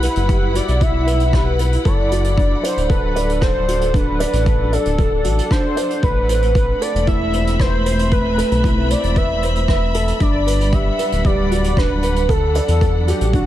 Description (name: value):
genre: piano and strings electronica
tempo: 115 BPM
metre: 4/4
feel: straight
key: unclear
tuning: A4 = 439 Hz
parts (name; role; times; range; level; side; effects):
- warm velvety synth lead; melody; 0.0-13.5 s; F#4 to E5; -22 LUFS; equal; chorus, digital delay
- dark studio string section; sustained chords; 0.0-13.5 s; F#3 to B5; -24 LUFS; equal; none
- dark concert grand piano; riff; 0.0-13.5 s; D4 to D5; -23 LUFS; equal; digital delay
- round analog bass; bass; 0.0-13.5 s; D1 to E2; -19 LUFS; equal; sidechain pumping
- vintage brush drum kit; drums; 0.0-13.4 s; hi-hat, rim click; -30 LUFS; right 3 dB; none
- electronic kick drum; drums; 0.3-13.4 s; none; -18 LUFS; equal; none
room: light reverb, small room ambience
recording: none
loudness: -15 LUFS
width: side -13 dB against mid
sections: 0.0-13.5 A section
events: none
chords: 0.0 Emadd9; 1.9 D; 6.0 Amadd9; 10.2 Gmaj7; 12.3 D